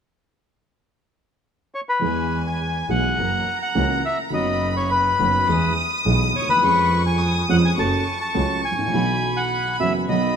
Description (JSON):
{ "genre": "tango", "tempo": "104 BPM", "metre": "4/4", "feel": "rubato", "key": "E major", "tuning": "A4 = 439 Hz", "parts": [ { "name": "bandoneon", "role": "melody", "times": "1.7-10.4 s", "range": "B4 to A5", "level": "-22 LUFS", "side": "left 2 dB", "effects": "none" }, { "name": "rich chamber violin section", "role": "second line", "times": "2.0-10.4 s", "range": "G#5 to D#6", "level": "-27 LUFS", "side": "equal", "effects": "none" }, { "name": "dark upright piano", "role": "accompaniment", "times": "2.0-10.3 s", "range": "F#1 to A4", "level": "-24 LUFS", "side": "right 2 dB", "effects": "none" }, { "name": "clear double bass", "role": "bass", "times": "2.0-8.6 s", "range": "F#1 to E#2", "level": "-24 LUFS", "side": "right 1 dB", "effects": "none" } ], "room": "moderate huge ambient reverb, RT60 5.2 s", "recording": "minimal, uncompressed stereo recording", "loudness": "-18 LUFS", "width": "side -7 dB against mid", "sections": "0.0-2.0 A section; 2.0-10.4 B section", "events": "none", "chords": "0.0 N.C.; 2.0 E; 3.2 F#7; 4.3 B/F#; 5.5 E; 6.6 C#/E#; 7.8 F#m; 8.9 Bsus4" }